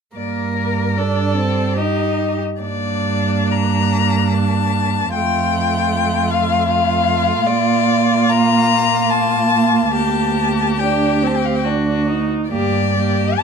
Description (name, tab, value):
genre	classical, slow romantic movement for string quartet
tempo	64-78 BPM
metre	3/4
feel	rubato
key	G minor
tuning	A4 = 440 Hz
part	warm violin	melody	0.2-13.4 s	D5 to Bb5	-20 LUFS	left 8 dB	none
part	rich violin	second line	0.2-13.4 s	D4 to Bb4	-22 LUFS	left 2 dB	none
part	dark viola	accompaniment	0.2-13.4 s	A3 to Eb4	-21 LUFS	right 4 dB	none
part	warm cello	bass	0.2-13.4 s	D2 to Bb2	-20 LUFS	right 4 dB	none
room	light reverb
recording	none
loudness	-15 LUFS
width	side -6 dB against mid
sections	0.2-2.6 A section; 2.6-13.4 B section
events	none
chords	0.2 Gm; 1.4 Cm/G; 2.6 Gm; 5.1 F; 7.5 Bb; 10.0 Gm/D; 11.7 D; 12.5 Gm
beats	| 0.16 0.97 1.77 | 2.62 3.52 4.35 | 5.15 5.93 6.71 | 7.48 8.31 9.12 | 9.95 10.80 11.65 | 12.51 13.41